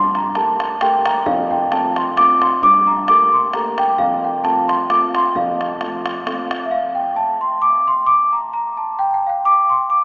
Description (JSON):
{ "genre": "celtic folk, Celtic waltz", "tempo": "132 BPM", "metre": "3/4", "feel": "swing 54% on 8ths", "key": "F major", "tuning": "A4 = 442 Hz", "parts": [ { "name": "large celesta", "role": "melody", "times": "0.0-10.0 s", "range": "E5 to D6", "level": "-14 LUFS", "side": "equal", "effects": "none" }, { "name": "dark upright piano", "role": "accompaniment", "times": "0.0-6.6 s", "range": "F2 to G4", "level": "-26 LUFS", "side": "equal", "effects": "none" }, { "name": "bodhran", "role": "percussion", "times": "0.0-6.6 s", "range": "none", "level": "-26 LUFS", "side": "equal", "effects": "none" } ], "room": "wet cathedral reverb, RT60 5.4 s", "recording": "recorded in a church or concert hall, small speaker sound", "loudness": "-14 LUFS", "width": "side -30 dB against mid", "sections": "0.0-6.7 A section; 6.7-10.0 A section", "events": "none", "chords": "0.0 Gmadd9; 1.3 F; 2.6 Gmadd9; 4.0 F; 6.7 N.C.", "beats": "0.36 0.81 | 1.27 1.72 2.17 | 2.63 3.08 3.54 | 3.99 4.44 4.90 | 5.35 5.80 6.26 | 6.71 7.17 7.62 | 8.08 8.54 8.99 | 9.45 9.90" }